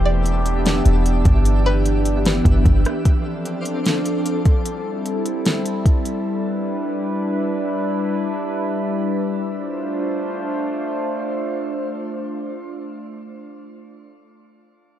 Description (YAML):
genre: hip hop, atmospheric cloud-rap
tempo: 150 BPM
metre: 4/4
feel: half-time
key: D dorian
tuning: A4 = 440 Hz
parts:
  - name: warbly tape-like pad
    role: sustained chords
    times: 0.0-13.4 s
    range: E3 to C5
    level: -22 LUFS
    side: equal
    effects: chorus, built-in reverb, sidechain pumping
  - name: clean 808-style bass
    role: bass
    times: 0.0-2.8 s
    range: E1 to G1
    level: -17 LUFS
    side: equal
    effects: none
  - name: twinkling granular texture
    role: texture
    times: 0.0-4.6 s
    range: B3 to E5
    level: -34 LUFS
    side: left 1 dB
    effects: built-in reverb
  - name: string-like resonator pluck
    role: melody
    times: 0.1-1.8 s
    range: B4 to D5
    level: -27 LUFS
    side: equal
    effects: chorus, phaser, tape echo
  - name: smooth R&B drum kit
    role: drums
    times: 0.3-6.1 s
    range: hi-hat, kick drum, rim click, snare drum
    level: -18 LUFS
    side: equal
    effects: none
room: light reverb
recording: dark, warm production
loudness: -18 LUFS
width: side -11 dB against mid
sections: 0.0-3.1 A section; 3.1-9.5 B section; 9.5-12.7 C section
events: none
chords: 0.0 Em7; 1.5 G6; 3.1 Dm7; 4.7 Am7; 6.3 G6; 9.5 Dm7